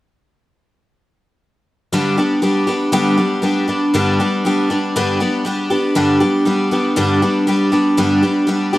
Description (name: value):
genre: rock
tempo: 119 BPM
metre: 4/4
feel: straight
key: G major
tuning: A4 = 440 Hz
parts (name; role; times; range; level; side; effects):
- picked twelve-string acoustic guitar; accompaniment; 1.9-8.8 s; G2 to G4; -14 LUFS; equal; none
room: light reverb, small room ambience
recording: dry, close 1970s-style studio recording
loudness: -14 LUFS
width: side -17 dB against mid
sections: 1.9-8.8 A section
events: none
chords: 1.9 G